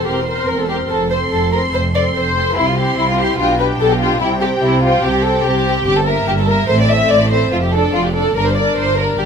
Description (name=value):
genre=quick classical-period movement for string orchestra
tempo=145 BPM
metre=4/4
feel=straight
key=unclear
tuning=A4 = 438 Hz
part: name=rich studio violin section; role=melody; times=0.0-9.2 s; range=D5 to C6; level=-24 LUFS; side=left 1 dB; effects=none
part: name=warm studio violin section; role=second line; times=0.0-9.2 s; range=E4 to E5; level=-16 LUFS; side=left 2 dB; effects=none
part: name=rich studio viola section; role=accompaniment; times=0.0-9.2 s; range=Bb3 to Bb4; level=-21 LUFS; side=equal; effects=none
part: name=warm studio cello section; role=bass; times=0.1-9.3 s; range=E2 to C3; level=-21 LUFS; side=right 2 dB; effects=none
part: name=warm studio double bass section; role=bass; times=0.1-9.3 s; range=E1 to C2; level=-21 LUFS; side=right 2 dB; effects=none
room=moderate large studio reverb, RT60 0.9 s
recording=minimal, uncompressed stereo recording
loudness=-13 LUFS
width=side -6 dB against mid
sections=0.0-9.3 A section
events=none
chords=0.1 C7/E; 0.9 F; 2.6 C; 3.4 G/B; 4.2 C5; 5.9 Edim/G; 6.7 Am; 7.5 Dm/F; 8.4 Gm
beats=0.06 0.48 | 0.90 1.31 1.73 2.15 | 2.56 2.97 3.38 3.80 | 4.21 4.62 5.04 5.45 | 5.86 6.27 6.69 7.11 | 7.53 7.94 8.36 8.78 | 9.20